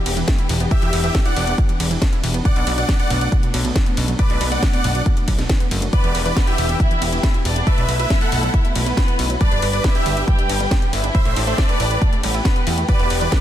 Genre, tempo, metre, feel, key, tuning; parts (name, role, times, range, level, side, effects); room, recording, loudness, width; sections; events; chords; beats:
uplifting trance; 138 BPM; 4/4; straight; E minor; A4 = 442 Hz
dark studio string section; sustained chords; 0.0-13.4 s; E3 to B4; -28 LUFS; left 4 dB; sidechain pumping
wide unison pluck; arpeggios; 0.1-13.4 s; F#2 to A4; -29 LUFS; right 5 dB; cassette tape, sidechain pumping, digital delay
plucky analog bass; bass; 0.1-13.3 s; E1 to E2; -22 LUFS; equal; sidechain pumping
house drum kit; drums; 0.1-13.4 s; hi-hat, ride cymbal, snare drum; -26 LUFS; left 1 dB
electronic kick drum; drums; 0.3-13.4 s; -18 LUFS; equal
big supersaw lead; melody; 0.7-13.4 s; G4 to F#5; -25 LUFS; equal; sidechain pumping, digital delay
rich symphonic violin section; second line; 5.9-13.4 s; B3 to G5; -25 LUFS; right 1 dB; digital delay
little or no reverb; dense, heavily limited modern master; -16 LUFS; side -11 dB against mid
0.0-13.4 A section
0.0 Em7; 2.5 Bm7; 5.9 Em7; 7.7 B7sus4; 9.4 G; 11.1 Am7; 12.9 Em7
0.28 | 0.71 1.15 1.58 2.02 | 2.45 2.89 3.32 3.76 | 4.19 4.63 5.06 5.50 | 5.93 6.37 6.80 7.23 | 7.67 8.10 8.54 8.97 | 9.41 9.84 10.28 10.71 | 11.15 11.58 12.02 12.45 | 12.89 13.32